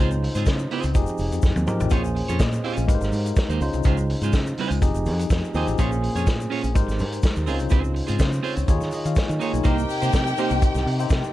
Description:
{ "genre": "disco", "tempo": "124 BPM", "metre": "4/4", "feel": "straight", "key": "unclear", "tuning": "A4 = 437 Hz", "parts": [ { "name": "barky tine electric piano", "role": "accompaniment", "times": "0.0-11.3 s", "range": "Bb2 to Ab5", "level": "-27 LUFS", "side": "left 2 dB", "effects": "overdrive, auto-pan" }, { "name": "clean electric guitar", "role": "accompaniment", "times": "0.0-11.3 s", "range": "Ab3 to Db5", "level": "-30 LUFS", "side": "right 6 dB", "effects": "none" }, { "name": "fingered electric bass", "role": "bass", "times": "0.0-11.2 s", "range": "F1 to Eb3", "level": "-25 LUFS", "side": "equal", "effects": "none" }, { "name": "tube shaker", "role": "percussion", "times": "0.1-11.3 s", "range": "none", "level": "-44 LUFS", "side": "left 9 dB", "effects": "none" }, { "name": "vintage drum kit", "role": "drums", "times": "0.2-11.2 s", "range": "hi-hat, kick drum, snare drum, toms", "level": "-23 LUFS", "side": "equal", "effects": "none" }, { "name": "rich studio violin section", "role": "second line", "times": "9.6-11.3 s", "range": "G4 to G5", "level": "-26 LUFS", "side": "left 2 dB", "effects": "tape echo" } ], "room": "small room reverb", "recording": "dark, warm production", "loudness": "-20 LUFS", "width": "side -15 dB against mid", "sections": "0.0-9.7 A section; 9.7-11.3 B section", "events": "drum fill 1.4-1.9; tine electric piano fill 8.7-9.7", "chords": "0.0 Dbmaj7; 0.9 Fm7; 1.9 Bbm7; 2.9 Abmaj9; 3.6 Dbmaj7; 4.8 Fm7; 5.8 Bbm7; 6.8 Abmaj9; 7.5 Dbmaj7; 8.7 Eb7sus4; 9.7 Cm7", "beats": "0.47 0.95 1.43 | 1.92 2.40 2.88 3.37 | 3.85 4.33 4.82 5.30 | 5.79 6.27 6.75 7.24 | 7.72 8.20 8.69 9.17 | 9.65 10.14 10.62 11.10" }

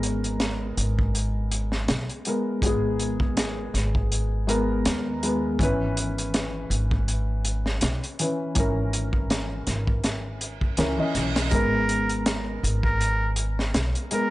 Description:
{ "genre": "trip hop", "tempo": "81 BPM", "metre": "4/4", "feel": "swing 55% on 16ths", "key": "G# minor", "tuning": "A4 = 440 Hz", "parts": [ { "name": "felt-muted upright piano", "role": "accompaniment", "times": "0.0-14.3 s", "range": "E3 to D#5", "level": "-28 LUFS", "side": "left 1 dB", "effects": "harmonic tremolo, vintage 12-bit sampler grit, tape echo" }, { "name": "upright bass", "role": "bass", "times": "0.0-13.9 s", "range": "G#1 to D#2", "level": "-27 LUFS", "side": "equal", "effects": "none" }, { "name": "crunchy breakbeat drum kit", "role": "drums", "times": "0.0-14.3 s", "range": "hi-hat, kick drum, snare drum", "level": "-26 LUFS", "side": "equal", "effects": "none" }, { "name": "reverse cymbal", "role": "sound effects", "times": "10.4-11.5 s", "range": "none", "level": "-36 LUFS", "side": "right 8 dB", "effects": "none" }, { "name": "trumpet with straight mute", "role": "melody", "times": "11.5-14.3 s", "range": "A#4", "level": "-28 LUFS", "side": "right 1 dB", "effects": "vintage 12-bit sampler grit, dub echo" } ], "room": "small room ambience", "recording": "dry, gritty hardware recording, nothing above 10.4 kHz", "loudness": "-22 LUFS", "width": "side -17 dB against mid", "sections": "0.0-14.3 A section", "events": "reverse cymbal 10.4-11.5", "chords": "0.0 G#madd9; 5.6 C#m7/G#; 11.5 G#madd9", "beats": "0.41 1.15 1.89 | 2.63 3.37 4.11 4.85 | 5.59 6.33 7.08 7.82 | 8.56 9.30 10.04 10.78 | 11.52 12.26 13.00 13.74" }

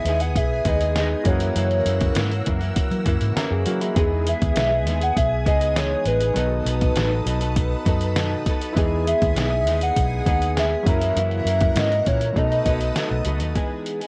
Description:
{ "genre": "indie pop, bedroom pop", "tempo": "100 BPM", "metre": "4/4", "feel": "straight", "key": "E major", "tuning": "A4 = 440 Hz", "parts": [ { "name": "warbly nostalgic lead", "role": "melody", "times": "0.0-13.3 s", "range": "B4 to F#5", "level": "-26 LUFS", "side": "equal", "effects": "analog chorus, tape echo" }, { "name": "direct-recorded clean electric guitar", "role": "accompaniment", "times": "0.0-14.1 s", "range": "F#2 to A4", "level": "-30 LUFS", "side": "equal", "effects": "lush chorus, vibrato effect" }, { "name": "warm upright piano", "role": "accompaniment", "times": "0.0-13.6 s", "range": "E3 to A#4", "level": "-34 LUFS", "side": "equal", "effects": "cassette tape" }, { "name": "string machine, full ensemble", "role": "sustained chords", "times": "0.0-13.5 s", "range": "G#4 to E6", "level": "-37 LUFS", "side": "equal", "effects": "ensemble chorus" }, { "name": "vintage muted fingered electric bass", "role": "bass", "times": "0.0-13.5 s", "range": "A1 to F#3", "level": "-26 LUFS", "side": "equal", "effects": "none" }, { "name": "lo-fi sampler-style drum kit", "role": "drums", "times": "0.1-14.1 s", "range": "hi-hat, kick drum, snare drum", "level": "-26 LUFS", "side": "equal", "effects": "none" } ], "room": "light reverb", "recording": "worn, warbling old tape, cassette tape, warbly pitch drift", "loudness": "-21 LUFS", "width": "mono", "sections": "0.0-13.6 A section", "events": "none", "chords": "0.0 Emaj7; 1.3 F#7; 4.0 Emaj7; 6.4 B7; 8.8 Emaj7; 10.9 F#7; 12.4 B7; 13.6 Emaj7", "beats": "0.36 0.96 | 1.56 2.16 2.76 3.36 | 3.96 4.56 5.16 5.76 | 6.36 6.96 7.56 8.16 | 8.76 9.36 9.96 10.56 | 11.16 11.76 12.36 12.96 | 13.56" }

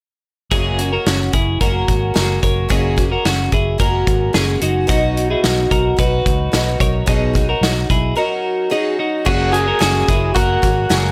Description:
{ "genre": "jangly indie pop", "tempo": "110 BPM", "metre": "4/4", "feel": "straight", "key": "F# mixolydian", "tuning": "A4 = 440 Hz", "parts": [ { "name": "picked twelve-string acoustic guitar", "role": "accompaniment", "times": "0.5-11.1 s", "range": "F#2 to F#4", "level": "-24 LUFS", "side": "equal", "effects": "none" }, { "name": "twelve-string electric guitar", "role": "arpeggios", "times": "0.5-11.1 s", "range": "C#4 to C#5", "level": "-23 LUFS", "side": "equal", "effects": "none" }, { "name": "vintage muted fingered electric bass", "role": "bass", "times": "0.5-11.1 s", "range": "F#1 to C#2", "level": "-23 LUFS", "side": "equal", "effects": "none" }, { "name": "loose indie drum kit", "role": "drums", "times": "0.5-11.0 s", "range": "crash cymbal, hi-hat, kick drum, snare drum", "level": "-21 LUFS", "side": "equal", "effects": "none" }, { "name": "electric guitar through a small old amp", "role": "melody", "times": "9.3-11.1 s", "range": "F#4 to G#4", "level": "-20 LUFS", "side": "equal", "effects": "tremolo" } ], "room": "little or no reverb", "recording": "none", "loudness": "-17 LUFS", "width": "mono", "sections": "0.5-9.3 A section; 9.3-11.1 B section", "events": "break 8.2-9.3", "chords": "0.5 F#add9; 4.9 Badd9; 9.3 F#add9", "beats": "| 0.52 1.06 1.61 2.16 | 2.71 3.25 3.80 4.35 | 4.89 5.44 5.99 6.53 | 7.08 7.63 8.17 8.72 | 9.26 9.81 10.36 10.90" }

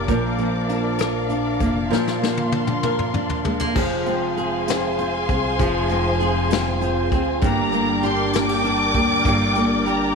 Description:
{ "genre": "six-eight pop ballad", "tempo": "66 BPM (dotted quarters)", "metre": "6/8", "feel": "straight", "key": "unclear", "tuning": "A4 = 441 Hz", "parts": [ { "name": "flamenco guitar", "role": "accompaniment", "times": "0.0-10.2 s", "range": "G2 to Bb4", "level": "-22 LUFS", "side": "right 1 dB", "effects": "double-tracked left and right" }, { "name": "warm studio string section", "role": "sustained chords", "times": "0.0-10.2 s", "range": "Ab4 to D6", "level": "-26 LUFS", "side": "left 2 dB", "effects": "none" }, { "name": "fingerpicked steel-string acoustic guitar", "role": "arpeggios", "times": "0.0-10.2 s", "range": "F3 to Ab4", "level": "-27 LUFS", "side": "equal", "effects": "none" }, { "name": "upright bass", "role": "bass", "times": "0.0-10.2 s", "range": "F1 to D2", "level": "-27 LUFS", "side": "right 1 dB", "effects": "none" }, { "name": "soft brush drum kit", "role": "drums", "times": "0.1-10.0 s", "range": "crash cymbal, hi-hat, kick drum, rim click, snare drum, toms", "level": "-25 LUFS", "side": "left 3 dB", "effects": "none" }, { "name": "warm studio violin section", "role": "second line", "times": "3.8-10.2 s", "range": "Ab5 to D6", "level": "-26 LUFS", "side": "equal", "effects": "none" } ], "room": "moderate echo chamber reverb, RT60 1.4 s, studio ambience", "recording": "1960s-style stereo", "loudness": "-18 LUFS", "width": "side -5 dB against mid", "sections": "0.0-3.8 A section; 3.8-10.2 B section", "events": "drum fill 1.9-3.8", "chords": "0.1 Bb; 3.8 Fm; 7.4 Gm", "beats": "| 0.09 1.00 | 1.91 2.84 | 3.76 4.68 | 5.60 6.51 | 7.42 8.34 | 9.25" }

